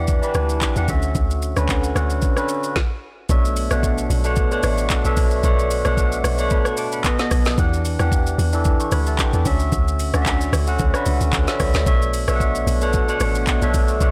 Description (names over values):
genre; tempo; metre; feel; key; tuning
amapiano; 112 BPM; 4/4; swing 55% on 16ths; unclear; A4 = 435 Hz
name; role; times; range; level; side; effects
barky tine electric piano; accompaniment; 0.0-14.1 s; B2 to D6; -25 LUFS; equal; phaser
deep log drum bass; bass; 0.0-14.1 s; A1 to E2; -23 LUFS; equal; none
afro-pop drum kit; drums; 0.1-14.1 s; handclaps, hi-hat, kick drum, rim click, shaker, snare drum; -24 LUFS; equal; none
room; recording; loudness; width
little or no reverb; blown-out, overdriven recording, overdrive; -20 LUFS; mono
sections
0.0-3.3 A section; 3.3-14.1 B section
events
stop 2.8-3.3; drop 3.3-14.1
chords
0.0 Em9; 0.9 Dmaj9; 3.3 Bm11; 7.0 B7; 7.6 Em9; 9.5 Dmaj9; 11.9 Bm11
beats
0.08 0.62 | 1.15 1.69 2.22 2.76 | 3.29 3.83 4.37 4.90 | 5.44 5.97 6.51 7.04 | 7.58 8.12 8.65 9.19 | 9.72 10.26 10.79 11.33 | 11.87 12.40 12.94 13.47 | 14.01